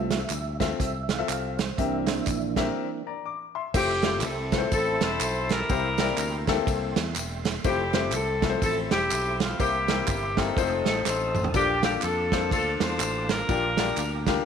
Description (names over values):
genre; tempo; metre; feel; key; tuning
uptempo gospel; 123 BPM; 4/4; swing 60% on 8ths; F major; A4 = 442 Hz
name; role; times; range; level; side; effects
clear grand piano; accompaniment; 0.0-14.4 s; Bb2 to D6; -30 LUFS; left 12 dB; none
percussive tonewheel organ; sustained chords; 0.0-14.4 s; E3 to Eb6; -35 LUFS; right 8 dB; slow rotary speaker, chorus vibrato
modern bright fingered electric bass; bass; 0.0-14.4 s; E1 to F2; -33 LUFS; left 1 dB; none
natural country drum kit; drums; 0.1-14.4 s; crash cymbal, hi-hat, kick drum, ride cymbal, snare drum, toms; -28 LUFS; right 4 dB; none
tambourine and handclaps; percussion; 0.1-14.4 s; none; -37 LUFS; right 2 dB; none
mellow saxophone section; melody; 3.7-14.3 s; Bb3 to C5; -27 LUFS; left 1 dB; none
room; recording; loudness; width
moderate echo chamber reverb, RT60 1.3 s, studio reverb; 1960s-style stereo with parts hard left and right; -23 LUFS; side -7 dB against mid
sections
0.0-3.7 A section; 3.7-14.4 B section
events
tonewheel organ solo 0.0-3.7; break 2.8-3.7; drum fill 11.1-11.5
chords
0.0 Fmaj7/C; 1.8 C7; 3.7 Fmaj7; 5.7 C7; 7.6 Fmaj7; 9.6 C7; 10.6 F7; 11.5 Bbmaj7; 13.5 Gm7/Bb